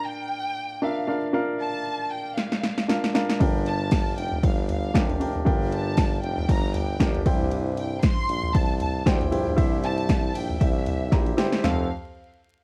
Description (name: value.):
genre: piano-driven pop.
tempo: 117 BPM.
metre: 4/4.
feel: swing 56% on 16ths.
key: unclear.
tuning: A4 = 440 Hz.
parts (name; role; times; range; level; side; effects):
warm studio violin section; melody; 0.0-11.9 s; E5 to C6; -34 LUFS; equal; plate reverb.
warm grand piano; accompaniment; 0.0-11.9 s; F2 to Bb5; -31 LUFS; equal; plate reverb.
deep house drum kit; drums; 2.4-11.8 s; kick drum, ride cymbal, snare drum, toms; -26 LUFS; equal; none.
clear tuba; bass; 3.4-11.9 s; F1 to D2; -31 LUFS; equal; none.
room: light reverb.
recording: worn, warbling old tape, cassette tape, vinyl crackle, warbly pitch drift.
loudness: -24 LUFS.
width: mono.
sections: 0.0-11.6 A section; 11.6-12.6 B section.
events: drum fill 2.4-3.4, 11.1-11.6.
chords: 0.0 Bb; 3.4 Gm; 7.3 C; 11.6 F.